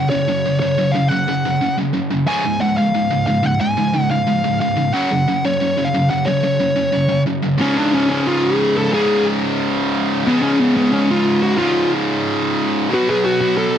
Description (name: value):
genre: metal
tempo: 180 BPM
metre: 4/4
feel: straight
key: C# major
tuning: A4 = 441 Hz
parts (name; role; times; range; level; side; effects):
- high-gain lead guitar; melody; 0.0-13.7 s; B3 to G#5; -18 LUFS; left 1 dB; distortion, slapback echo
- high-gain distorted guitar; riff; 0.0-13.8 s; C#2 to B3; -17 LUFS; right 1 dB; distortion
room: little or no reverb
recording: dry, close 1970s-style studio recording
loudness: -15 LUFS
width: side -9 dB against mid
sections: 0.0-7.6 A section; 7.6-13.8 B section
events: half time 7.6-13.8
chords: 0.0 F#5; 2.3 C#; 4.9 F#5; 7.6 C#5; 12.9 B5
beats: 0.28 0.61 | 0.94 1.28 1.61 1.94 | 2.27 2.61 2.94 3.27 | 3.60 3.94 4.27 4.60 | 4.93 5.27 5.60 5.93 | 6.26 6.60 6.93 7.26 | 7.59 7.93 8.26 8.59 | 8.92 9.25 9.59 9.92 | 10.25 10.58 10.91 11.25 | 11.58 11.91 12.24 12.58 | 12.91 13.24 13.57